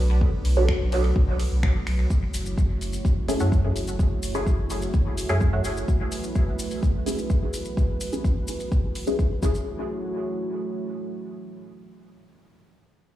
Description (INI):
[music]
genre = dub techno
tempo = 127 BPM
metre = 4/4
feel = straight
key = F# minor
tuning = A4 = 440 Hz
[part]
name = dark analog pad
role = sustained chords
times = 0.0-12.6 s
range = A3 to C#5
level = -32 LUFS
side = right 2 dB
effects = chorus, vintage 12-bit sampler grit, sidechain pumping
[part]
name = warm sub bass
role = bass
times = 0.0-5.8 s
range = F#1 to F#2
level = -24 LUFS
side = equal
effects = sidechain pumping
[part]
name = electronic kick drum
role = drums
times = 0.2-9.5 s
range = none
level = -23 LUFS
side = equal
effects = none
[part]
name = deep house drum kit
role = drums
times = 0.4-9.0 s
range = finger snaps, hi-hat, ride cymbal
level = -38 LUFS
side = equal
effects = dub echo
[part]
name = filtered dub chord stab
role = stabs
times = 0.6-12.6 s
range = A3 to C#5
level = -30 LUFS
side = equal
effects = phaser, sidechain pumping, dub echo
[part]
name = maracas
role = percussion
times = 2.1-9.6 s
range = none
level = -39 LUFS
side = left 3 dB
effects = none
[part]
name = filtered dub chord stab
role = riff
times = 3.4-5.6 s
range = A4 to F#5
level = -38 LUFS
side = right 2 dB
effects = chorus, sidechain pumping, dub echo
[sound]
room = light reverb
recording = played on a big sound system in a bare room, large studio reverb, small room ambience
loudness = -22 LUFS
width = side -13 dB against mid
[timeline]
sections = 0.0-2.1 A section; 2.1-9.7 B section; 9.7-13.2 C section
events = filter sweep on synth stab 0.0-2.1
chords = 0.0 Bm7; 2.1 F#m7